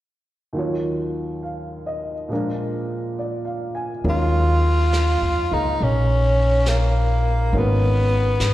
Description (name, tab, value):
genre	jazz ballad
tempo	69 BPM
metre	4/4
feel	swing 67% on 8ths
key	Eb minor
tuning	A4 = 440 Hz
part	warm upright piano	accompaniment	0.5-8.5 s	Eb2 to Ab5	-26 LUFS	right 1 dB	slapback echo
part	upright bass	bass	4.0-8.5 s	Ab1 to Ab2	-19 LUFS	equal	none
part	vintage brush drum kit	drums	4.0-8.5 s	brushed snare drum, hi-hat, snare drum	-32 LUFS	right 1 dB	none
part	warm tenor saxophone	melody	4.1-8.5 s	Bb3 to F4	-21 LUFS	left 1 dB	slapback echo
room	light reverb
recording	live gig heard through the venue's PA, recital hall reverb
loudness	-18 LUFS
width	side -15 dB against mid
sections	0.6-4.0 A section; 4.0-8.5 B section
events	none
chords	0.6 Ebm7; 2.3 Bb7; 4.0 Ebm11; 7.5 Abm7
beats	| 0.56 1.44 2.30 3.17 | 4.04 4.92 5.79 6.66 | 7.53 8.39